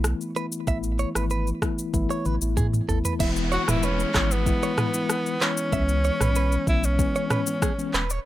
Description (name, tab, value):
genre	afrobeats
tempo	95 BPM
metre	4/4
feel	straight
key	E major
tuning	A4 = 440 Hz
part	mellow tine electric piano	accompaniment	0.0-8.0 s	E3 to E4	-28 LUFS	left 4 dB	medium stereo tremolo
part	warm sub bass	bass	0.0-8.2 s	D#1 to A2	-25 LUFS	equal	none
part	afro-pop drum kit	drums	0.0-8.2 s	crash cymbal, handclaps, kick drum, rim click, shaker, toms	-26 LUFS	equal	none
part	direct-recorded clean electric guitar	riff	0.4-8.2 s	G#4 to E5	-31 LUFS	right 7 dB	tape echo
part	downlifter	sound effects	3.2-8.3 s	none	-35 LUFS	right 1 dB	none
part	breathy tenor saxophone	melody	3.5-7.9 s	B3 to F#4	-27 LUFS	right 1 dB	tape echo
room	little or no reverb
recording	none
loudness	-22 LUFS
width	side -14 dB against mid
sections	0.0-3.2 A section; 3.2-8.3 B section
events	drum fill 1.9-3.2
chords	0.0 Asus2; 3.2 E; 5.7 C#m7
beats	0.04 | 0.67 1.31 1.94 2.57 | 3.20 3.83 4.46 5.09 | 5.73 6.36 6.99 7.62